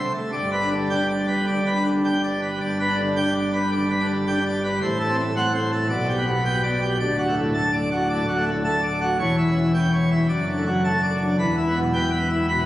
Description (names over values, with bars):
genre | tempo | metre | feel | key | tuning
classical, organ toccata | 109 BPM | 4/4 | straight | G major | A4 = 439 Hz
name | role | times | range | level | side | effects
pipe organ, plenum | solo | 0.0-12.7 s | D1 to A5 | -20 LUFS | equal | none
room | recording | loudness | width
wet church reverb, RT60 3.6 s | recorded on a phone in the room, studio reverb | -20 LUFS | side -14 dB against mid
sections
0.0-2.6 A section; 2.6-12.7 A section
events
none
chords
0.3 G; 4.8 F#dim/A; 5.9 G/B; 7.0 D; 9.2 C#dim/E; 10.3 D/F#; 11.4 Em